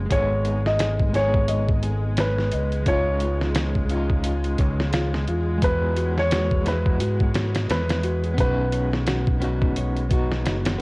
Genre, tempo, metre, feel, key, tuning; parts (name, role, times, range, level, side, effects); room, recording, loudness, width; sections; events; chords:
trip hop; 87 BPM; 4/4; swing 58% on 16ths; G# minor; A4 = 441 Hz
electric guitar at the edge of break-up; accompaniment; 0.0-10.8 s; G#3 to G#4; -29 LUFS; equal; tremolo
clear symphonic string section; sustained chords; 0.0-10.8 s; G#3; -36 LUFS; equal; vintage 12-bit sampler grit
overdriven fingered electric bass; bass; 0.0-10.8 s; F#1 to G#2; -24 LUFS; equal
felt-muted upright piano; melody; 0.1-8.9 s; B4 to D#5; -27 LUFS; equal; tape echo
nylon-string guitar; arpeggios; 0.1-10.8 s; E#4 to D#5; -32 LUFS; left 1 dB; digital delay
trip hop sampler-style drum kit; drums; 0.1-10.8 s; hi-hat, kick drum, snare drum; -24 LUFS; equal; studio reverb
small room ambience; worn, warbling old tape, cassette tape, warbly pitch drift; -20 LUFS; side -26 dB against mid
0.0-10.8 A section
0.1 G#m; 2.9 C#add9; 5.6 Eadd9; 8.4 Badd9